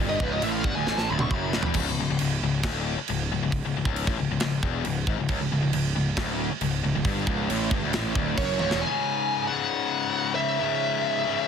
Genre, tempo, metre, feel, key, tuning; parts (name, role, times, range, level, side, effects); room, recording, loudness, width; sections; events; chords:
heavy metal; 136 BPM; 4/4; straight; C# minor; A4 = 441 Hz
distorted electric guitar; riff; 0.0-1.8, 5.3-8.8 s; C#2 to A2; -30 LUFS; right 10 dB; distortion
tight distorted guitar; riff; 0.0-11.5 s; C#2 to C#3; -28 LUFS; left 10 dB; distortion
fuzz picked electric bass; bass; 0.0-8.8 s; C#1 to A1; -30 LUFS; right 1 dB; overdrive
smooth overdriven lead guitar; melody; 0.1-1.6, 8.4-11.5 s; B4 to C#6; -27 LUFS; right 2 dB
tight metal drum kit; drums; 0.2-8.8 s; crash cymbal, kick drum, snare drum, toms; -29 LUFS; right 1 dB; soft clipping on kick
light reverb; dense, heavily limited modern master; -23 LUFS; side -7 dB against mid
0.0-1.8 A section; 1.8-8.8 B section; 8.8-11.5 C section
lead electric guitar solo 0.0-1.8; drum fill 0.9-1.8, 8.6
0.0 C#m; 1.8 N.C.; 8.8 C#m